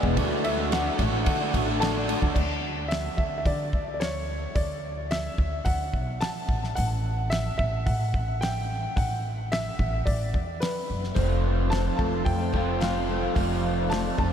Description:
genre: folk rock and heartland rock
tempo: 109 BPM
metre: 4/4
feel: straight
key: unclear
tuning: A4 = 440 Hz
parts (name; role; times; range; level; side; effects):
- warm grand piano; melody; 0.0-14.3 s; B4 to A5; -31 LUFS; equal; ping-pong delay
- clear upright piano; accompaniment; 0.0-2.3 s; F#4 to E5; -40 LUFS; right 4 dB; none
- picked steel-string acoustic guitar; accompaniment; 0.0-2.4, 11.2-14.3 s; F2 to F#4; -34 LUFS; left 6 dB; ensemble chorus
- pedal harmonium; sustained chords; 0.0-2.3, 11.2-14.3 s; F#3 to A5; -37 LUFS; right 1 dB; none
- crunchy overdriven guitar; riff; 0.0-2.4, 11.1-14.3 s; D3 to G#4; -30 LUFS; right 2 dB; analog chorus
- upright bass; bass; 0.0-14.3 s; E1 to D3; -29 LUFS; equal; none
- damped 70s drum kit; drums; 0.0-14.3 s; crash cymbal, hi-hat, kick drum, ride cymbal, snare drum; -30 LUFS; equal; none
room: moderate huge ambient reverb, RT60 7.8 s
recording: dreamy mix soaked in reverb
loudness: -24 LUFS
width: side -9 dB against mid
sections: 0.0-2.4 A section; 2.4-14.3 B section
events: none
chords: 0.2 D; 2.4 Dsus2; 6.5 A5; 11.2 F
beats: | 0.17 0.72 1.27 1.82 | 2.37 2.92 3.47 4.02 | 4.57 5.12 5.67 6.22 | 6.77 7.32 7.87 8.42 | 8.97 9.52 10.07 10.62 | 11.17 11.72 12.27 12.82 | 13.37 13.92

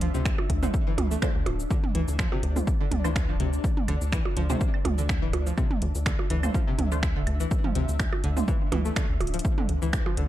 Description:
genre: minimal techno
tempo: 124 BPM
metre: 4/4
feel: swing 54% on 16ths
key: D minor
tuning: A4 = 437 Hz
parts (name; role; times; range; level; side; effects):
- string-like resonator pluck; riff; 0.0-10.2 s; C3 to A3; -34 LUFS; left 1 dB; chorus, sidechain pumping, digital delay
- rubbery square bass; bass; 0.0-10.3 s; D1 to D2; -27 LUFS; equal; sidechain pumping
- house drum kit; drums; 0.0-10.3 s; finger snaps, hi-hat, shaker; -35 LUFS; right 1 dB; overdrive
- pulsing gated texture; texture; 0.0-10.3 s; C4 to E5; -38 LUFS; left 2 dB; chorus, built-in reverb, sidechain pumping
- electronic kick drum; drums; 0.3-10.0 s; none; -27 LUFS; equal; overdrive
- electronic percussion blips, claves and toms; percussion; 0.4-10.2 s; none; -33 LUFS; right 5 dB; digital delay
- filtered dub chord stab; stabs; 0.6-8.5 s; A3 to C5; -36 LUFS; right 2 dB; phaser, digital delay
room: digital ambience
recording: dark, warm production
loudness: -23 LUFS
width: side -13 dB against mid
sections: 0.0-10.3 A section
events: drum fill 9.2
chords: 0.0 Dm7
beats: 0.25 0.74 1.22 | 1.71 2.19 2.67 3.16 | 3.64 4.12 4.61 5.09 | 5.58 6.06 6.54 7.03 | 7.51 8.00 8.48 8.96 | 9.45 9.93

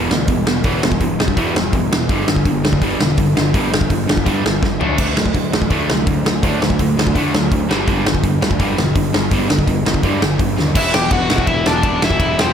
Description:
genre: punk rock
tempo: 166 BPM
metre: 4/4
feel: straight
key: E minor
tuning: A4 = 439 Hz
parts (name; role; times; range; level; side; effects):
- distorted electric guitar; riff; 0.0-12.5 s; G2 to E4; -22 LUFS; left 10 dB; distortion
- distorted electric guitar; riff; 0.0-10.7 s; E2 to D4; -21 LUFS; right 10 dB; distortion
- fuzz picked electric bass; bass; 0.0-12.5 s; E1 to D3; -22 LUFS; equal; overdrive
- big rock drum kit; drums; 0.1-12.5 s; crash cymbal, hi-hat, kick drum, ride cymbal, snare drum, toms; -17 LUFS; equal; none
- overdriven electric guitar; melody; 10.8-12.5 s; C4 to G5; -18 LUFS; equal; none
room: little or no reverb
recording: none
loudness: -14 LUFS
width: side -8 dB against mid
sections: 0.0-10.8 A section; 10.8-12.5 B section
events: drum fill 4.6-5.0, 10.6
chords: 0.0 Em; 2.1 G5; 4.8 D; 7.7 G5; 10.8 Em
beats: 0.28 | 0.65 1.01 1.37 1.73 | 2.10 2.46 2.82 3.18 | 3.54 3.90 4.26 4.63 | 4.99 5.35 5.71 6.07 | 6.43 6.79 7.15 7.51 | 7.88 8.24 8.60 8.96 | 9.32 9.68 10.04 10.40 | 10.76 11.12 11.48 11.84 | 12.20

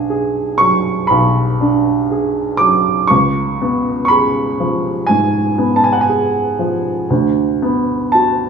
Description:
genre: classical, romantic nocturne for solo piano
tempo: 60 BPM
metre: 4/4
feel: rubato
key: unclear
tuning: A4 = 440 Hz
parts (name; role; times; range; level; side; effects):
- warm baby grand piano; solo; 0.0-8.5 s; B1 to D6; -13 LUFS; right 1 dB; none
room: moderate recital hall reverb, RT60 1.6 s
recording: studio ambience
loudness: -13 LUFS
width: side -6 dB against mid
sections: 0.0-8.5 A section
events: none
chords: 0.0 G#m7b5/B; 3.1 C#7; 7.1 D6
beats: 0.10 1.10 2.11 | 3.11 4.12 5.10 6.09 | 7.10 8.14

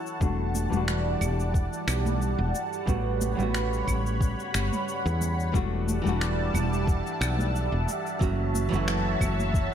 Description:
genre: sunset chillout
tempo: 90 BPM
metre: 4/4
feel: swing 54% on 16ths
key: E dorian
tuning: A4 = 440 Hz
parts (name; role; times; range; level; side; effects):
- nylon-string guitar; accompaniment; 0.0-9.7 s; C#3 to F#4; -32 LUFS; moving between left 7 dB and right 8 dB; auto-pan, low-pass filter, ping-pong delay
- lush unison pad; sustained chords; 0.0-9.7 s; G3 to B5; -31 LUFS; right 1 dB; chorus, phaser
- electronic cabasa, finger snaps and claves; drums; 0.1-9.7 s; none; -34 LUFS; equal; overdrive, small room ambience
- woody fretless electric bass; bass; 0.2-9.7 s; E1 to E2; -28 LUFS; equal; none
- electronic kick drum; drums; 0.2-9.7 s; none; -26 LUFS; equal; overdrive, small room ambience
- congas; percussion; 0.5-9.5 s; none; -36 LUFS; right 1 dB; none
- wind-like tuned noise texture; texture; 6.3-9.7 s; E5; -38 LUFS; right 1 dB; built-in reverb
room: light reverb, digital ambience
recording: none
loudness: -24 LUFS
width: side -9 dB against mid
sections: 0.0-9.7 A section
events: filter sweep on nylon-string guitar 0.0-9.7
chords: 0.2 Em11; 2.9 A13; 5.5 Em11; 8.2 F#m7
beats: | 0.21 0.88 1.54 2.21 | 2.88 3.54 4.21 4.88 | 5.54 6.21 6.88 7.54 | 8.21 8.88 9.54

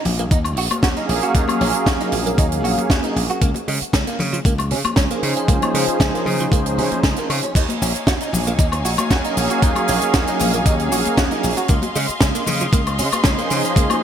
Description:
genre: nu-disco, nu disco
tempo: 116 BPM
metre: 4/4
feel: straight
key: Eb dorian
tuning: A4 = 439 Hz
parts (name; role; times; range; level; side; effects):
- direct-recorded clean electric guitar; riff; 0.0-13.8 s; F3 to Gb4; -27 LUFS; right 3 dB; ensemble chorus, ping-pong delay
- warm analog pad; accompaniment; 0.2-14.0 s; F3 to F5; -22 LUFS; right 1 dB; chorus, sidechain pumping, ping-pong delay
- slap bass; bass; 0.1-13.9 s; Bb1 to Db3; -23 LUFS; equal; none
- tight funk drum kit; drums; 0.1-14.0 s; cabasa, crash cymbal, hi-hat, snare drum, woodblock; -22 LUFS; right 1 dB; gated reverb
- congas; percussion; 0.1-14.0 s; none; -29 LUFS; left 3 dB; none
- electronic kick drum; drums; 0.3-13.9 s; none; -18 LUFS; equal; none
- warm studio violin section; sustained chords; 7.6-14.0 s; Eb4 to C6; -26 LUFS; equal; sidechain pumping
room: moderate lush hall reverb, RT60 2.0 s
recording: bright 1980s-style digital production, faint mains hum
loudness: -16 LUFS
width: side -9 dB against mid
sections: 0.0-14.0 A section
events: none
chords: 0.0 Ebm11; 3.4 Bbm11/Db; 7.6 Ebm11; 11.7 Bbm11/Db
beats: 0.32 0.83 | 1.35 1.87 2.39 2.90 | 3.42 3.94 4.46 4.97 | 5.49 6.01 6.53 7.04 | 7.56 8.08 8.59 9.11 | 9.63 10.14 10.66 11.18 | 11.70 12.21 12.73 13.25 | 13.77

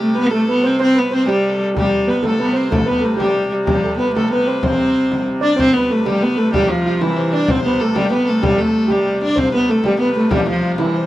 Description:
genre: medieval dance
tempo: 126 BPM (dotted quarters)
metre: 6/8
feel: straight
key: C major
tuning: A4 = 441 Hz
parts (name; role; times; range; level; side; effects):
- rich viola da gamba; melody; 0.0-11.1 s; E3 to D4; -16 LUFS; equal; none
- steel pan; second line; 0.0-11.1 s; E4 to D5; -23 LUFS; right 5 dB; none
- warm fiddle; second line; 0.0-11.1 s; E4 to D5; -25 LUFS; left 5 dB; none
- clear hurdy-gurdy; drone; 0.0-11.1 s; C3 to G3; -27 LUFS; right 1 dB; none
- frame drum; percussion; 1.8-10.9 s; none; -23 LUFS; left 2 dB; none
room: moderate booth ambience, RT60 0.2 s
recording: dry, close 1970s-style studio recording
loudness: -14 LUFS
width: side -15 dB against mid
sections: 0.0-5.6 A section; 5.6-11.1 B section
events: none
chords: none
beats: 0.32 | 0.80 1.28 | 1.76 2.25 | 2.72 3.20 | 3.68 4.16 | 4.64 5.11 | 5.59 6.06 | 6.54 7.01 | 7.49 7.96 | 8.43 8.90 | 9.37 9.85 | 10.31 10.79

